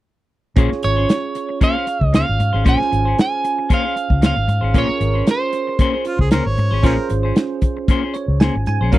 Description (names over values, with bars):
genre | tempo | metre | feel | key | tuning
straight-eighth soul blues | 115 BPM | 4/4 | swing 53% on 16ths | Bb minor | A4 = 441 Hz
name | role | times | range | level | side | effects
bell-like tine electric piano | accompaniment | 0.6-9.0 s | Db4 to Ab5 | -25 LUFS | right 5 dB | analog chorus
clean electric guitar | stabs | 0.6-9.0 s | Eb3 to C5 | -23 LUFS | left 7 dB | none
vintage muted fingered electric bass | bass | 0.6-9.0 s | Ab1 to Ab2 | -18 LUFS | equal | none
warm soul drum kit | drums | 0.6-9.0 s | hi-hat, kick drum, snare drum | -16 LUFS | equal | none
electric guitar at the edge of break-up | melody | 0.8-7.3 s | C5 to Ab5 | -21 LUFS | right 3 dB | none
warm harmonica | second line | 6.1-7.1 s | Db4 to Db5 | -24 LUFS | right 2 dB | overdrive
room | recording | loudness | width
little or no reverb | dry, close 1970s-style studio recording | -15 LUFS | side -16 dB against mid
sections
0.6-9.0 A section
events
tine electric piano fill 7.9-8.9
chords
0.6 Bbm9